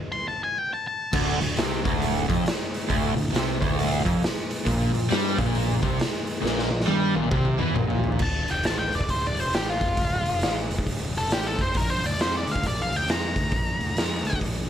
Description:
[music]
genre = blues rock power trio and southern rock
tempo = 136 BPM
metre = 4/4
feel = swing 63% on 8ths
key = D minor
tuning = A4 = 438 Hz
[part]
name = octave-fuzz lead guitar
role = melody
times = 0.1-1.1, 8.2-14.4 s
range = F4 to C6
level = -27 LUFS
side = left 1 dB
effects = distortion, plate reverb
[part]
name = overdriven semi-hollow guitar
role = riff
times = 1.1-8.2 s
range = D2 to G3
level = -24 LUFS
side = equal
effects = none
[part]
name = fuzz picked electric bass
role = bass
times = 1.1-14.7 s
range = D1 to G2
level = -30 LUFS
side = equal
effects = overdrive
[part]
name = raw garage drum kit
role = drums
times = 1.1-14.5 s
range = crash cymbal, hi-hat, kick drum, snare drum, toms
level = -26 LUFS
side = equal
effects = none
[sound]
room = moderate large studio reverb, RT60 0.8 s, small room ambience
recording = none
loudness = -22 LUFS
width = side -10 dB against mid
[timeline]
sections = 0.0-1.1 A section; 1.1-8.2 B section; 8.2-14.7 C section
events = stop 0.0-1.1; drum fill 6.4-8.2; lead electric guitar solo 8.2-14.7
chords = 0.0 N.C.; 1.1 Dm; 4.7 C7(no3)/Bb; 8.2 Dm; 11.7 Bb

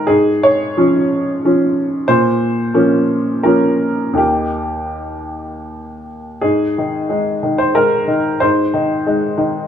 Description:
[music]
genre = neoclassical minimalist piano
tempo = 79-95 BPM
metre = 3/4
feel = rubato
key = Ab major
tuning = A4 = 440 Hz
[part]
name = clear upright piano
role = solo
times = 0.0-9.7 s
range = Eb2 to Db5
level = -14 LUFS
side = equal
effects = none
[sound]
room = wet studio reverb, RT60 0.5 s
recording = band playing live in one room, lossy compression artefacts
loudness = -13 LUFS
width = side -9 dB against mid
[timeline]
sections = 0.0-6.4 A section; 6.4-9.7 B section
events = none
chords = 0.1 Db/Ab; 2.1 Bbm; 4.2 Eb; 6.4 Ab

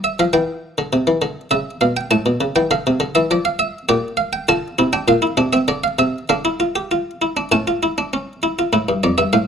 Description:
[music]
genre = classical, baroque-style 3-part fugue for harpsichord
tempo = 101 BPM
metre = 4/4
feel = straight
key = D minor from 3.9 s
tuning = A4 = 435 Hz
[part]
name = buff-stop harpsichord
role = solo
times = 0.0-9.5 s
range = F2 to A5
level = -16 LUFS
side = equal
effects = none
[sound]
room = light reverb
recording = close, detailed microphones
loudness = -16 LUFS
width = side -7 dB against mid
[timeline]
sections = 0.0-8.7 A section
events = none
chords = 0.3 C; 1.5 A7; 2.7 Dm; 3.9 Gm/Bb; 5.1 Bb; 6.3 Dm; 7.5 A; 8.7 Dm

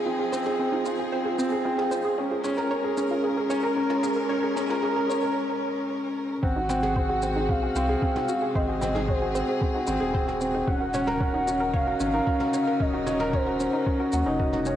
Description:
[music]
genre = piano and strings electronica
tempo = 113 BPM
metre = 4/4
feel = straight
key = unclear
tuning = A4 = 440 Hz
[part]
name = rich string quartet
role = sustained chords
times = 0.0-14.8 s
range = C3 to Bb4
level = -36 LUFS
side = left 2 dB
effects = sidechain pumping, cassette tape, shimmer reverb
[part]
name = dark grand piano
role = riff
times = 0.0-14.8 s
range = C4 to Gb5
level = -25 LUFS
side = equal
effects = cassette tape, tape echo, shimmer reverb
[part]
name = wide unison pluck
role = arpeggios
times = 0.1-14.7 s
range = C4 to Db5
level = -33 LUFS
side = right 2 dB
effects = sidechain pumping, cassette tape, tape echo, shimmer reverb
[part]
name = toms and shaker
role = drums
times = 0.3-14.8 s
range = none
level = -39 LUFS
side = right 1 dB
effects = high-pass filter on toms, cassette tape, high-pass filter on snare, high-pass filter on perc, high-pass filter on room
[part]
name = warm velvety synth lead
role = melody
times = 6.4-13.9 s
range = C5 to Gb5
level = -30 LUFS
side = equal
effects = chorus, cassette tape, tape echo, shimmer reverb
[part]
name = round analog bass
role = bass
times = 6.4-14.8 s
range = Eb1 to Eb2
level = -32 LUFS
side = equal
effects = sidechain pumping
[part]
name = electronic kick drum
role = drums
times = 6.4-14.5 s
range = none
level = -27 LUFS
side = equal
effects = cassette tape
[sound]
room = wet lush hall reverb, RT60 1.9 s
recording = home recording on cassette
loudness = -23 LUFS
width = side -11 dB against mid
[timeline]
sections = 0.0-6.4 A section; 6.4-14.8 B section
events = build-up 0.0-6.4; break 5.4-6.4; drop 6.4-14.8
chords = 0.0 Fm7; 2.2 Bbm7; 6.4 Ab7; 10.7 Ebm7

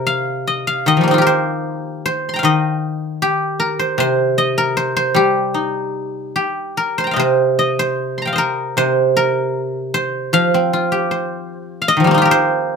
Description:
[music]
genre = chinese traditional, Chinese solo plucked strings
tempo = 76 BPM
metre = 2/4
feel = rubato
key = unclear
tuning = A4 = 440 Hz
[part]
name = guzheng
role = solo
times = 0.0-12.8 s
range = C3 to C6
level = -15 LUFS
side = equal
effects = none
[sound]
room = moderate studio reverb, RT60 0.6 s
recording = band playing live in one room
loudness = -15 LUFS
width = side -5 dB against mid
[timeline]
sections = 0.0-7.2 A section; 7.2-12.8 B section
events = none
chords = none

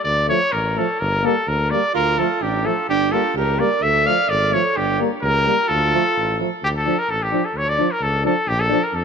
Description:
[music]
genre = balkan folk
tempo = 128 BPM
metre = 2/4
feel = straight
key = D harmonic minor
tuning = A4 = 440 Hz
[part]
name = warm trumpet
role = melody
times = 0.0-9.0 s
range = G4 to F5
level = -19 LUFS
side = left 1 dB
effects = none
[part]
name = mellow tuba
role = bass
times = 0.0-9.0 s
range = G1 to F2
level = -24 LUFS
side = left 1 dB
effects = none
[part]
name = mellow euphonium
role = accompaniment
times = 0.3-8.8 s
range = F3 to G3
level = -27 LUFS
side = right 11 dB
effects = none
[part]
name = warm French horn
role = accompaniment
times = 0.3-8.8 s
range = A3 to D4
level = -26 LUFS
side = left 14 dB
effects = none
[part]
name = mellow alto saxophone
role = second line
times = 1.9-6.4 s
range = D4 to D5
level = -24 LUFS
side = right 10 dB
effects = none
[sound]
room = moderate plate reverb, RT60 3.2 s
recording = 1960s-style stereo with parts hard left and right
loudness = -17 LUFS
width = side -6 dB against mid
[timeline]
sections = 0.0-6.6 A section; 6.6-9.0 B section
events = none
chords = 0.1 Dm; 1.0 Gm; 1.9 Dm; 2.9 Gm; 3.8 Dm; 4.8 Gm; 5.7 Dm; 8.5 Bb

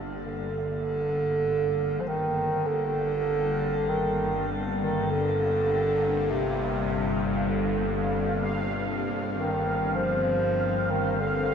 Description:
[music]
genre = dark ambient drone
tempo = 50 BPM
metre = 4/4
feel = straight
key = G minor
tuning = A4 = 440 Hz
[part]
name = sweeping resonant pad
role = sustained chords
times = 0.0-11.5 s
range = G3 to C4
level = -38 LUFS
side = equal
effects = chorus, shimmer reverb
[part]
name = dark detuned synth bell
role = arpeggios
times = 0.0-11.5 s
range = none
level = barely audible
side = none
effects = none
[part]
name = bowed-like drone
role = drone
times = 0.0-11.5 s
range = G1 to G2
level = -30 LUFS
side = left 2 dB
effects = built-in reverb, phaser
[part]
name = bubbling stepped-filter texture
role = texture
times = 0.0-11.5 s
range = F5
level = -37 LUFS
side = right 3 dB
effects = chorus, built-in reverb, shimmer reverb
[part]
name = mellow bass clarinet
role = melody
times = 0.3-11.5 s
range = C3 to F3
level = -26 LUFS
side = right 1 dB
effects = shimmer reverb, tape echo
[sound]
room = wet huge ambient reverb, RT60 8.1 s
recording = none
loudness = -24 LUFS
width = side -7 dB against mid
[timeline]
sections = 0.0-11.5 A section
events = fade-in on analog synth pad 0.0-11.5; fade-in on synth texture 0.0-11.5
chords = 0.0 Gm

